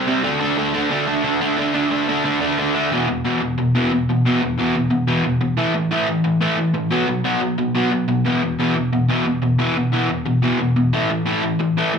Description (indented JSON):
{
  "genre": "punk",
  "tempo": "180 BPM",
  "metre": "4/4",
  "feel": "straight",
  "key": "unclear",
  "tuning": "A4 = 437 Hz",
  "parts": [
    { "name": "crunchy overdriven guitar", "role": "solo", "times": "0.0-12.0 s", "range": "E2 to D4", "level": "-17 LUFS", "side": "equal", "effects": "slapback echo" }
  ],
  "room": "moderate club reverb, RT60 0.5 s",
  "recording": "live gig heard through the venue's PA, club reverb",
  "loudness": "-17 LUFS",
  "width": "side -6 dB against mid",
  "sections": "0.0-2.9 A section; 2.9-12.0 B section",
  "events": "none",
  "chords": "0.2 D5; 2.9 E5; 5.6 A5; 6.9 B5; 8.3 E5; 10.9 A5",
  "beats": "| 0.25 0.58 0.91 1.25 | 1.58 1.91 2.25 2.58 | 2.91 3.25 3.58 3.92 | 4.25 4.58 4.92 5.25 | 5.58 5.92 6.25 6.59 | 6.92 7.25 7.59 7.92 | 8.26 8.59 8.93 9.26 | 9.60 9.93 10.27 10.60 | 10.94 11.27 11.61 11.95"
}